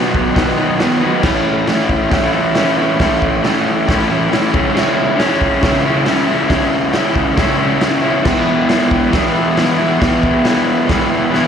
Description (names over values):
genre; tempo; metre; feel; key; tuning
garage rock duo or trio; 137 BPM; 4/4; straight; E major; A4 = 440 Hz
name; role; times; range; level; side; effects
crunchy overdriven guitar; riff; 0.0-11.5 s; A2 to E4; -13 LUFS; equal; slapback echo
raw garage drum kit; drums; 0.1-11.4 s; crash cymbal, hi-hat, kick drum, snare drum; -18 LUFS; equal; none
room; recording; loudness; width
little or no reverb; live gig heard through the venue's PA, club reverb; -12 LUFS; side -7 dB against mid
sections
0.0-11.5 A section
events
none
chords
0.0 B; 1.2 A; 4.5 C#m; 8.3 E